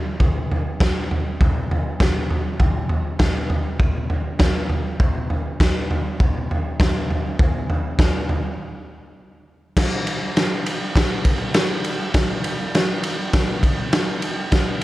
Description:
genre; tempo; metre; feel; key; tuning
rock; 100 BPM; 4/4; straight; none; none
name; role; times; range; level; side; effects
raw garage drum kit; drums; 0.2-14.8 s; crash cymbal, kick drum, ride cymbal, snare drum, toms; -18 LUFS; equal; none
room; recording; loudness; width
moderate club reverb, RT60 0.6 s; none; -18 LUFS; side -17 dB against mid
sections
0.0-9.8 A section; 9.8-14.8 B section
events
break 8.6-9.8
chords
none

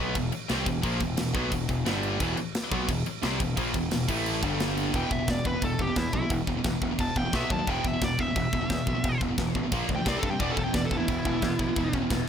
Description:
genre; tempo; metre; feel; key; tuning
heavy metal; 176 BPM; 4/4; straight; E minor; A4 = 441 Hz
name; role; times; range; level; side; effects
crunchy overdriven guitar; riff; 0.0-4.9, 10.4-12.3 s; E2 to C4; -33 LUFS; right 1 dB; none
distorted electric guitar; riff; 0.0-12.3 s; E2 to C4; -32 LUFS; right 11 dB; distortion
high-gain distorted guitar; riff; 0.0-12.3 s; E2 to C4; -32 LUFS; left 10 dB; distortion
overdriven picked electric bass; bass; 0.0-12.2 s; E1 to G2; -32 LUFS; equal; none
tight metal drum kit; drums; 0.2-12.2 s; crash cymbal, kick drum, snare drum; -31 LUFS; equal; none
high-gain lead guitar; melody; 5.0-12.0 s; E4 to A5; -32 LUFS; left 1 dB; distortion, ping-pong delay
room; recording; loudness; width
little or no reverb; none; -25 LUFS; side -8 dB against mid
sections
0.0-4.9 A section; 4.9-12.3 B section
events
lead electric guitar solo 4.9-12.3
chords
0.0 Em; 1.9 G5; 2.2 Em; 4.1 A5; 4.4 G5; 4.9 E5; 7.3 B5; 7.7 E5; 9.7 A#5; 10.1 C5; 10.4 E5

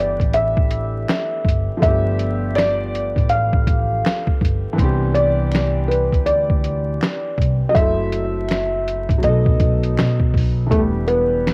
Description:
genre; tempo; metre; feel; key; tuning
lo-fi hip hop; 81 BPM; 4/4; swing 62% on 16ths; unclear; A4 = 436 Hz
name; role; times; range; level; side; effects
felt-muted upright piano; melody; 0.0-11.5 s; A3 to F5; -23 LUFS; equal; low-pass filter, cassette tape
clear upright piano; accompaniment; 0.0-11.5 s; E3 to A4; -28 LUFS; equal; low-pass filter
upright bass; bass; 0.0-11.5 s; E1 to B2; -24 LUFS; equal; none
lo-fi sampler-style drum kit; drums; 0.2-11.5 s; finger snaps, hi-hat, kick drum, snare drum; -22 LUFS; equal; vintage 12-bit sampler grit, cassette tape
finger snap; percussion; 1.1-10.2 s; none; -42 LUFS; equal; none
room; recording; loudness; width
light reverb; home recording on cassette, vinyl crackle; -18 LUFS; mono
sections
0.0-10.7 A section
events
none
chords
0.0 G69; 4.8 Cmaj9; 7.7 F#m7b5; 9.2 B7; 10.7 Em7

